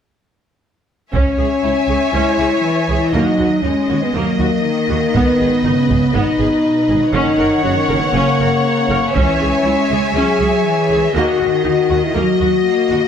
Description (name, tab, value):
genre	cinematic, epic orchestral film score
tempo	120 BPM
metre	4/4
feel	straight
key	unclear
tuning	A4 = 439 Hz
part	rich symphonic violin section	second line	1.1-13.1 s	B4 to G#5	-22 LUFS	left 3 dB	none
part	rich symphonic viola section	accompaniment	1.1-13.0 s	A#3 to C#5	-22 LUFS	right 1 dB	none
part	mellow French horn section	sustained chords	1.1-13.1 s	A#3 to G#4	-16 LUFS	left 3 dB	none
part	clear symphonic double bass section	bass	1.1-13.0 s	F#1 to D#2	-22 LUFS	right 4 dB	none
part	taiko ensemble	drums	1.1-2.1, 5.1-6.1, 9.2-10.1 s	none	-20 LUFS	right 1 dB	none
part	rich symphonic cello section	bass	2.1-13.1 s	B2 to A#3	-21 LUFS	right 4 dB	none
room	moderate scoring stage reverb, RT60 1.7 s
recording	none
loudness	-13 LUFS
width	side -8 dB against mid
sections	1.1-13.1 A section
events	none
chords	1.1 C#m; 3.1 D#m; 5.1 G#m; 7.1 F#; 9.1 C#m; 11.2 D#m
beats	| 1.13 1.63 2.13 2.63 | 3.13 3.63 4.14 4.64 | 5.14 5.64 6.14 6.64 | 7.14 7.64 8.15 8.65 | 9.15 9.65 10.15 10.65 | 11.15 11.65 12.16 12.66